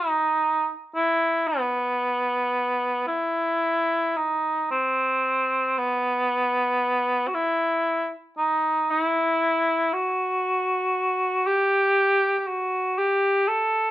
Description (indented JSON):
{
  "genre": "caucasian folk",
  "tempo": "55-61 BPM",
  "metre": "4/4",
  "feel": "rubato",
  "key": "B phrygian dominant",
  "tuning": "A4 = 441 Hz",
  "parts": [
    { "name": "mellow cor anglais", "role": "solo", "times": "0.0-13.9 s", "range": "B3 to A4", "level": "-21 LUFS", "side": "equal", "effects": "none" }
  ],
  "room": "light reverb",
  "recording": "band playing live in one room",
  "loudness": "-21 LUFS",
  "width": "side -14 dB against mid",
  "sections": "0.0-4.2 A section; 4.2-13.9 B section",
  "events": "none",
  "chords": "none"
}